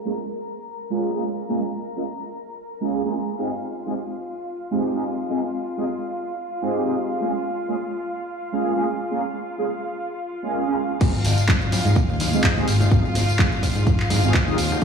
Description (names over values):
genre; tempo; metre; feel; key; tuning
filtered disco house; 126 BPM; 4/4; swing 55% on 16ths; Ab major; A4 = 439 Hz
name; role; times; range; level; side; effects
mellow synth brass; accompaniment; 0.0-14.8 s; Ab3 to Ab4; -25 LUFS; right 2 dB; chorus, phaser, sidechain pumping, low-pass filter
clear studio violin section; sustained chords; 0.0-14.8 s; F4 to Bb5; -30 LUFS; left 1 dB; sidechain pumping, low-pass filter
fingered electric bass; bass; 11.0-14.8 s; Ab1 to Ab2; -21 LUFS; equal; tube saturation, sidechain pumping, low-pass filter
electronic kick drum; drums; 11.0-14.8 s; none; -19 LUFS; equal; none
punchy analog drum machine; drums; 11.0-14.8 s; crash cymbal, handclaps, hi-hat, tambourine; -26 LUFS; equal; sidechain pumping on hats, low-pass filter on hats, sidechain pumping on cymbals, low-pass filter on cymbals, sidechain pumping on perc, low-pass filter on perc, low-pass filter on snare, low-pass filter on room
tambourine and congas; percussion; 11.0-14.8 s; none; -28 LUFS; left 4 dB; sidechain pumping on perc, low-pass filter on perc
room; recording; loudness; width
moderate plate reverb, RT60 2.1 s; played on a big sound system in a bare room, stone room reverb; -20 LUFS; side -6 dB against mid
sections
0.0-11.0 A section; 11.0-14.8 B section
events
filter sweep 0.0-11.0; drop 11.0-14.8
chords
0.0 Bbm7; 3.4 Abmaj7; 7.2 Bbm7; 11.0 Abmaj7